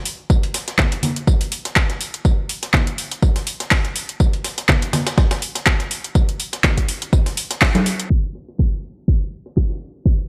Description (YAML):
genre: house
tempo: 123 BPM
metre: 4/4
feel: swing 55% on 16ths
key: none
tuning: none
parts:
  - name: breakbeat sampler-style drum kit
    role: drums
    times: 0.1-10.2 s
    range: hi-hat, snare drum, tambourine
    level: -31 LUFS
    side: equal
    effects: high-pass filter on snare, low-pass filter on snare, studio reverb, high-pass filter on perc, low-pass filter on perc, high-pass filter on hats, low-pass filter on hats
  - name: deep house drum kit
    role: drums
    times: 0.1-9.7 s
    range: crash cymbal, handclaps, hi-hat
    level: -23 LUFS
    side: equal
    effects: low-pass filter on hats, studio reverb, low-pass filter on snare, low-pass filter on cymbals
  - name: electronic kick drum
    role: drums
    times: 0.3-10.2 s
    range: none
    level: -19 LUFS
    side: equal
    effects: overdrive, studio reverb
  - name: congas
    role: percussion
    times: 0.8-7.8 s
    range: none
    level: -24 LUFS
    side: equal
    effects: none
room: digital ambience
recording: dry, gritty hardware recording, transformer saturation, low-pass filter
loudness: -19 LUFS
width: mono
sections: 0.0-8.1 A section; 8.1-10.3 B section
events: band accent 7.6; filter sweep 8.1-10.3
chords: none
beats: | 0.30 0.79 1.27 1.76 | 2.25 2.74 3.23 3.71 | 4.20 4.69 5.18 5.67 | 6.15 6.64 7.13 7.62 | 8.10 8.59 9.08 9.57 | 10.05